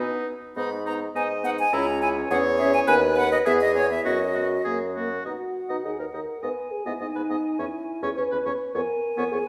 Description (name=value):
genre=quick classical-period movement for wind quintet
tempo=103 BPM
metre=2/4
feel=straight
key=unclear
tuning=A4 = 440 Hz
part: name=warm oboe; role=second line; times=0.0-9.4 s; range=D#4 to D#5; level=-33 LUFS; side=equal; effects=none
part: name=clear clarinet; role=accompaniment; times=0.0-9.4 s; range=B3 to D#5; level=-31 LUFS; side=equal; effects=none
part: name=mellow French horn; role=accompaniment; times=0.0-9.4 s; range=A#3 to B4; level=-32 LUFS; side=equal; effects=none
part: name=dark bassoon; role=bass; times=0.0-9.4 s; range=C#2 to B2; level=-30 LUFS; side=equal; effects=none
part: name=bright silver concert flute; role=melody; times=0.6-9.5 s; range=C#5 to B5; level=-30 LUFS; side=equal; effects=none
room=wet recital hall reverb, RT60 1.7 s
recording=small room ambience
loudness=-25 LUFS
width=mono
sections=0.0-5.3 A section; 5.3-9.5 B section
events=none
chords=0.0 B; 0.6 G#m; 1.7 C#m; 2.3 C#m/E; 2.9 B/D#; 3.5 E; 4.1 B/F#; 4.7 F#; 5.3 N.C.; 5.8 D#m; 6.4 G#m; 7.6 C#m7/E; 8.7 C#7 (rootless)